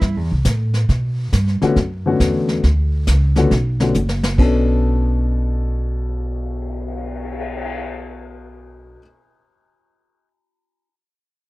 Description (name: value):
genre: jazz, small-group swing and bop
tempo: 137 BPM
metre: 4/4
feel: swing 66% on 8ths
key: B minor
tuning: A4 = 440 Hz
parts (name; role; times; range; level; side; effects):
- warm upright piano; accompaniment; 0.0-9.0 s; B2 to A4; -21 LUFS; left 3 dB; none
- upright bass; bass; 0.0-8.9 s; F#1 to B2; -18 LUFS; equal; none
- vintage brush drum kit; drums; 0.0-7.8 s; brushed snare drum, crash cymbal, cymbal swell, hi-hat, kick drum, snare drum; -23 LUFS; equal; none
room: little or no reverb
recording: dry, close 1970s-style studio recording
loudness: -16 LUFS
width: side -19 dB against mid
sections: 0.0-4.4 A section; 4.4-7.9 B section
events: drum fill 4.0-4.4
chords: 0.0 C; 0.9 Bm9